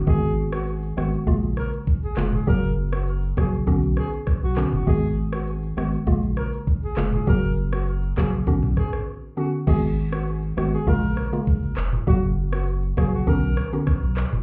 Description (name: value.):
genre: afrobeats.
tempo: 100 BPM.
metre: 4/4.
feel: straight.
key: unclear.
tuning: A4 = 444 Hz.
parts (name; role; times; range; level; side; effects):
warm sub bass; bass; 0.0-14.4 s; E#1 to B1; -27 LUFS; equal; none.
breathy alto saxophone; melody; 0.1-13.7 s; F#4 to A#4; -35 LUFS; equal; plate reverb, digital delay.
mallet-like synth pluck; accompaniment; 0.1-14.0 s; C#3 to F#4; -28 LUFS; equal; chorus, plate reverb.
afro-pop drum kit; drums; 0.1-14.4 s; crash cymbal, handclaps, kick drum, rim click, shaker, toms; -27 LUFS; equal; none.
room: light reverb.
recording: heard muffled through a wall, club reverb, EQ.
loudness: -23 LUFS.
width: mono.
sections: 0.0-9.7 A section; 9.7-14.4 B section.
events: break 9.1-9.7.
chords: 0.1 G#m7; 1.3 A#m7; 2.5 F#; 3.7 Bmadd9; 4.9 G#m7; 6.1 A#m7; 7.3 F#; 8.5 Bmadd9; 9.7 G#m7; 10.9 A#m7; 12.1 F#; 13.3 Bmadd9.